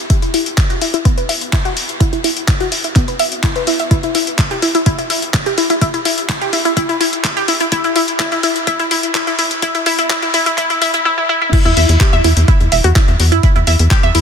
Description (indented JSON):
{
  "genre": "progressive house",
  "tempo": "126 BPM",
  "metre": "4/4",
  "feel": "straight",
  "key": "unclear",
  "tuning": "A4 = 441 Hz",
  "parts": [
    { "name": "glassy wavetable pluck", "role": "arpeggios", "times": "0.1-14.2 s", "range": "B3 to E5", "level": "-16 LUFS", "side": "left 1 dB", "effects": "chorus, sidechain pumping, ping-pong delay" },
    { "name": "deep house drum kit", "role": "drums", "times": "0.1-14.2 s", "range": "crash cymbal, handclaps, hi-hat, toms", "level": "-18 LUFS", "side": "left 2 dB", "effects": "overdrive, high-pass filter on hats, high-pass filter on snare, high-pass filter on toms, high-pass filter on cymbals, high-pass filter on room" },
    { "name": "electronic kick drum", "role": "drums", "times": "0.1-14.0 s", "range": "none", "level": "-14 LUFS", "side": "equal", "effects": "overdrive" },
    { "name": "tight sequencer bass", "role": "bass", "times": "11.7-14.2 s", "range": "E1 to F#2", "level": "-12 LUFS", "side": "equal", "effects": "tube saturation, sidechain pumping" }
  ],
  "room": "light reverb",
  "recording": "dense, heavily limited modern master, high-pass filter",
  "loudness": "-12 LUFS",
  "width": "side -7 dB against mid",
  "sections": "0.0-11.5 A section; 11.5-14.2 B section",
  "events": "build-up 0.0-11.5; filter sweep on synth arpeggio sound 0.0-11.5; filter sweep 0.0-11.5; drum fill 11.1-11.5; drop 11.5-14.2",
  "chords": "0.1 Bsus4; 3.9 N.C."
}